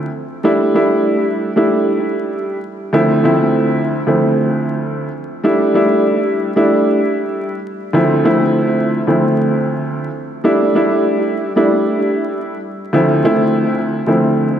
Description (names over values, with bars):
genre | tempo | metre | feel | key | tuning
hip hop | 96 BPM | 4/4 | swing 62% on 16ths | D minor | A4 = 440 Hz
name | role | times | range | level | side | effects
dark upright piano | solo | 0.0-14.6 s | D2 to E4 | -13 LUFS | equal | cassette tape, high-pass filter, low-pass filter, analog delay
room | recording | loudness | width
wet plate reverb, RT60 2.9 s | dreamy mix soaked in reverb, vinyl crackle | -13 LUFS | side -9 dB against mid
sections
0.0-14.6 A section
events
none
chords
0.4 A7sus4; 2.9 Dm9; 5.4 A7sus4; 7.9 Dm9; 10.4 A7sus4; 12.9 Dm9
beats
| 0.44 1.06 1.69 2.31 | 2.94 3.56 4.19 4.81 | 5.44 6.06 6.69 7.31 | 7.94 8.56 9.19 9.81 | 10.44 11.06 11.69 12.31 | 12.94 13.56 14.19